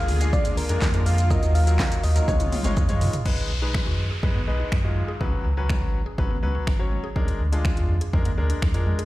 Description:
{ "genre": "dance-pop", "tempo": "123 BPM", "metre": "4/4", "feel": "straight", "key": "unclear", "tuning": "A4 = 440 Hz", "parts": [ { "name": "soft struck synth lead", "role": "melody", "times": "0.0-2.8 s", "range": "Bb4 to F5", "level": "-30 LUFS", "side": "equal", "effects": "chorus, digital delay" }, { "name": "clear concert grand piano", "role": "accompaniment", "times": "0.0-9.0 s", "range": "Gb3 to Db5", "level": "-31 LUFS", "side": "left 2 dB", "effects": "none" }, { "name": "lush unison pad", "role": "sustained chords", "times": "0.0-3.2 s", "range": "Db3 to Ab4", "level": "-32 LUFS", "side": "equal", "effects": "chorus, phaser, sidechain pumping" }, { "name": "sub bass with octave", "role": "bass", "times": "0.1-8.9 s", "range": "Ab1 to Gb2", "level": "-23 LUFS", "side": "equal", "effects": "sidechain pumping" }, { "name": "deep house drum kit", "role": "drums", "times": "0.1-9.1 s", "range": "crash cymbal, finger snaps, handclaps, hi-hat, kick drum, shaker, snare drum, toms", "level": "-25 LUFS", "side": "equal", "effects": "overdrive" }, { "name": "mallet-like synth pluck", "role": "arpeggios", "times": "3.3-9.1 s", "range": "G#3 to G#4", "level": "-37 LUFS", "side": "right 1 dB", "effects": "chorus, phaser, sidechain pumping, digital delay" }, { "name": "downlifter", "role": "sound effects", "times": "3.3-7.2 s", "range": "none", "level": "-36 LUFS", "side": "left 1 dB", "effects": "none" } ], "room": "digital ambience", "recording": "played on a big sound system in a bare room, large studio reverb", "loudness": "-20 LUFS", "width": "side -17 dB against mid", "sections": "0.0-3.3 A section; 3.3-9.1 B section", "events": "drum fill 2.3-3.3", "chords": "0.0 Bb7/D; 1.3 Ebmadd9; 2.3 Dbadd9; 3.3 B6; 5.2 Db7sus4; 7.2 Bb7/D", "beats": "0.33 0.82 | 1.30 1.79 2.28 2.77 | 3.26 3.74 4.23 4.72 | 5.21 5.70 6.18 6.67 | 7.16 7.65 8.13 8.62" }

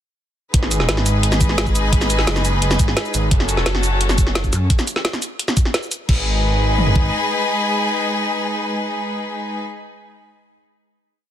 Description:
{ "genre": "dark technical drum and bass", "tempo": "173 BPM", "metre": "4/4", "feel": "straight", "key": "G# phrygian", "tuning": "A4 = 440 Hz", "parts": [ { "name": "rich chamber string section", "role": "sustained chords", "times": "0.5-9.6 s", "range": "F#3 to B4", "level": "-23 LUFS", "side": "left 1 dB", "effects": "vintage 12-bit sampler grit, sidechain pumping" }, { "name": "phased detuned saw bass", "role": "bass", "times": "0.5-7.1 s", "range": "F#1 to G#1", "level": "-20 LUFS", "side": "equal", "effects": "phaser, overdrive, sidechain pumping" }, { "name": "drum and bass drum kit", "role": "drums", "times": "0.5-7.0 s", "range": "kick drum, toms", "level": "-17 LUFS", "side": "equal", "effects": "none" }, { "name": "drum and bass drum kit", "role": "drums", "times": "0.5-6.2 s", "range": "crash cymbal, hi-hat, shaker, snare drum", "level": "-21 LUFS", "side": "equal", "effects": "soft clipping on snare" }, { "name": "clear studio string section", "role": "texture", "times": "0.5-9.6 s", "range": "F#4 to B5", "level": "-25 LUFS", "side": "left 2 dB", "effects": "sidechain pumping" }, { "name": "pulsing pluck wobble bass", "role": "bass", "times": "4.5-4.7 s", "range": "F#2", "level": "-17 LUFS", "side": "equal", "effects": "chorus" } ], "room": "light reverb", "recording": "dense, heavily limited modern master", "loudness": "-16 LUFS", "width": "side -10 dB against mid", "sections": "0.5-6.1 drop; 6.1-8.9 final chord", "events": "drop 0.5-6.1", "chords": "0.5 G#m; 3.3 F#m; 6.1 G#m", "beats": "| 0.54 0.89 1.23 1.58 | 1.93 2.27 2.62 2.97 | 3.31 3.66 4.01 4.35 | 4.70 5.05 5.39 5.74 | 6.09 6.43 6.78 7.13 | 7.47 7.82 8.17 8.52" }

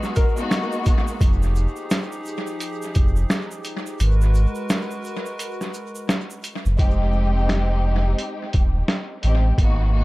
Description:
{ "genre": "hip hop, boom-bap hip-hop", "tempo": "86 BPM", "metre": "4/4", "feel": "swing 60% on 16ths", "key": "F minor", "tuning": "A4 = 440 Hz", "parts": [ { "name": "warm studio string section", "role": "accompaniment", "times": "0.0-1.2, 6.8-10.0 s", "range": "Ab3 to G4", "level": "-27 LUFS", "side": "left 1 dB", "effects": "high-pass filter, low-pass filter, tape echo" }, { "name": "hollow soft pad", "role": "sustained chords", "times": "0.0-6.8 s", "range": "F3 to Bb5", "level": "-32 LUFS", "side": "equal", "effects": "chorus, high-pass filter, low-pass filter" }, { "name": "boom bap sampler-style drum kit", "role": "drums", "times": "0.0-9.8 s", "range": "hi-hat, kick drum, shaker, snare drum", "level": "-22 LUFS", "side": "equal", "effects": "tape echo" }, { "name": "tube shaker", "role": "percussion", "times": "0.0-6.8 s", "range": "none", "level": "-44 LUFS", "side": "right 5 dB", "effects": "tape echo" }, { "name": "sub bass with octave", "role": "bass", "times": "1.2-10.0 s", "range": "Eb1 to A1", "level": "-19 LUFS", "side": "equal", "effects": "none" } ], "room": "little or no reverb", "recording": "echo-heavy mix", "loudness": "-19 LUFS", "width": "side -20 dB against mid", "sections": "0.0-6.8 A section; 6.8-10.0 B section", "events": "break 0.0-1.2; kick muted 4.0-6.8", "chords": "0.0 Abm9; 1.2 Fm9; 4.0 Abm9; 6.8 Fm9", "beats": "0.51 | 1.21 1.91 2.60 3.30 | 4.00 4.70 5.39 6.09 | 6.79 7.49 8.19 8.88 | 9.58" }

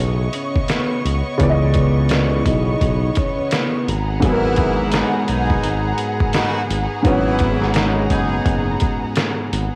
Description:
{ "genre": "hip hop, boom-bap hip-hop", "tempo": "85 BPM", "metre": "4/4", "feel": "swing 60% on 16ths", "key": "C# minor", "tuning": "A4 = 440 Hz", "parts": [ { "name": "warm upright piano", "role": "accompaniment", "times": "0.0-9.8 s", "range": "G#2 to D#5", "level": "-24 LUFS", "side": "equal", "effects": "cassette tape" }, { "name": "clear studio string section", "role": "sustained chords", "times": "0.0-9.8 s", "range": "B3 to C#6", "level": "-29 LUFS", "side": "equal", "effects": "cassette tape" }, { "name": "smooth synth bass", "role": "bass", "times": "0.0-9.7 s", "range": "F#1 to C#2", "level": "-23 LUFS", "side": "equal", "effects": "none" }, { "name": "vibraphone with medium mallets", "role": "melody", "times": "0.3-3.8 s", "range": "B3 to D#5", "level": "-27 LUFS", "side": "equal", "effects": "cassette tape, tape echo" }, { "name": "trip hop sampler-style drum kit", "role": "drums", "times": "0.3-9.7 s", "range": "hi-hat, kick drum, snare drum", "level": "-24 LUFS", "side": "equal", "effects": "cassette tape" }, { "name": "clear horn section", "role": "stabs", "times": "4.2-8.8 s", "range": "E3 to G#4", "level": "-26 LUFS", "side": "equal", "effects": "cassette tape, tape echo" } ], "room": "light reverb", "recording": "home recording on cassette, vinyl crackle", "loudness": "-18 LUFS", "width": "mono", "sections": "0.0-9.8 A section", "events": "none", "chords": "0.0 C#m9; 3.9 G#m9", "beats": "0.70 | 1.40 2.11 2.81 3.52 | 4.23 4.93 5.64 6.34 | 7.05 7.76 8.46 9.17" }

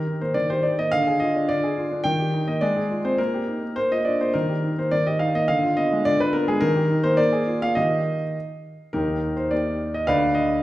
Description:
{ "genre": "classical-period piano sonatina", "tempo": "105 BPM", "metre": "2/4", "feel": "straight", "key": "Eb major", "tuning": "A4 = 441 Hz", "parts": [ { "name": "warm concert grand piano", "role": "solo", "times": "0.0-10.6 s", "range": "D2 to G5", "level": "-20 LUFS", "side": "equal", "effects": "none" } ], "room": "wet recital hall reverb, RT60 1.4 s", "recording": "heard from further back in the room", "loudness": "-20 LUFS", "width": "side -16 dB against mid", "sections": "0.0-8.9 A section; 8.9-10.6 A section", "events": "none", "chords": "0.0 Eb; 0.9 Ddim; 2.0 Eb; 2.6 Fm/Ab; 3.2 Eb/Bb; 3.8 Bb; 4.3 Eb; 5.5 Ddim7; 6.6 Eb; 7.2 Bb7; 7.8 Eb; 10.1 Dm6", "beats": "0.35 | 0.92 1.49 | 2.05 2.61 | 3.19 3.76 | 4.34 4.92 | 5.49 6.05 | 6.61 7.18 | 7.76 8.35 | 8.94 9.51 | 10.08" }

